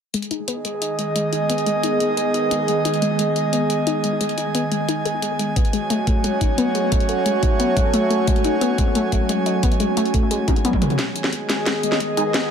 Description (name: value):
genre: dark technical drum and bass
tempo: 177 BPM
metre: 4/4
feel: straight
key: G# phrygian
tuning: A4 = 440 Hz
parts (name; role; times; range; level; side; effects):
- sweeping resonant pad; sustained chords; 0.1-12.5 s; D#3 to G#4; -25 LUFS; right 1 dB; chorus, sidechain pumping
- warbly dusty pluck; arpeggios; 0.1-12.4 s; G#3 to G#4; -24 LUFS; left 4 dB; chorus, sidechain pumping, ping-pong delay
- drum and bass drum kit; drums; 0.1-12.4 s; hi-hat, snare drum, toms; -25 LUFS; left 1 dB; none
- airy breathy pad; texture; 0.1-12.5 s; F#4 to G#5; -23 LUFS; right 2 dB; chorus, sidechain pumping
- electronic kick drum; drums; 5.6-12.4 s; none; -20 LUFS; equal; high-pass filter on kick, high-pass filter on room
- band-passed chord stab; stabs; 12.2 s; G#3 to G#4; -23 LUFS; right 5 dB; phaser, ensemble chorus, ping-pong delay
room: moderate lush hall reverb, RT60 2.2 s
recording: none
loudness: -18 LUFS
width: side -7 dB against mid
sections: 0.1-11.0 A section; 11.0-12.5 B section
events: filter sweep on synth arpeggio sound 0.1-11.0, 11.0-12.5; drum fill 10.5-11.0, 11.0-12.5; build-up 11.0-12.5; filter sweep 11.0-12.5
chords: 0.1 G#m; 5.6 F#m; 11.0 G#m